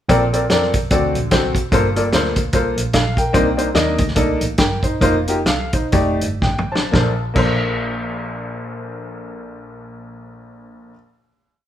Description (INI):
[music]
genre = uptempo gospel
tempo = 112-148 BPM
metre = 4/4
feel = swing 58% on 8ths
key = Bb major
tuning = A4 = 440 Hz
[part]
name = clear upright piano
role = accompaniment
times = 0.1-10.9 s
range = Bb1 to A5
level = -19 LUFS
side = left 1 dB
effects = none
[part]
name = rich double bass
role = bass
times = 0.1-10.9 s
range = F1 to F2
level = -23 LUFS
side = right 1 dB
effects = none
[part]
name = warm soul drum kit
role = drums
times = 0.1-7.5 s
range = crash cymbal, hi-hat, kick drum, snare drum, toms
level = -19 LUFS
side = equal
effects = none
[sound]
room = moderate large studio reverb, RT60 1.1 s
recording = band playing live in one room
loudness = -15 LUFS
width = side -11 dB against mid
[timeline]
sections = 0.1-6.9 breakdown; 6.9-11.2 final chord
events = slowing down 3.3-6.9; drum fill 6.4-6.9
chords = 0.1 Bbmaj9; 0.9 D7; 1.7 Gm11; 3.3 Cm9; 5.0 F7sus4; 5.9 F13; 6.9 Bbmaj9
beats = | 0.09 0.50 0.90 1.31 | 1.72 2.12 2.53 2.94 | 3.34 3.75 4.16 4.58 | 5.01 5.46 5.93 6.42 | 6.94 7.47 8.01 8.54 | 9.08 9.62 10.15 10.69